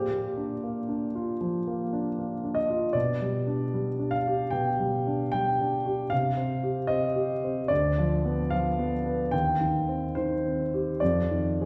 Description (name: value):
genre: classical, romantic character piece for solo piano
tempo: 66-79 BPM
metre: 4/4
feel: rubato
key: C minor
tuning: A4 = 440 Hz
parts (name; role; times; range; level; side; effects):
- warm concert grand piano; solo; 0.0-11.7 s; D2 to G5; -28 LUFS; equal; none
room: wet recital hall reverb, RT60 1.5 s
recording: heard from further back in the room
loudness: -28 LUFS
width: mono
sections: 0.0-11.7 A section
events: none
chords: 0.0 Bb; 2.9 G/B; 6.1 Cm; 7.7 Bdim/D; 9.3 Cm/Eb; 11.0 F7(no3)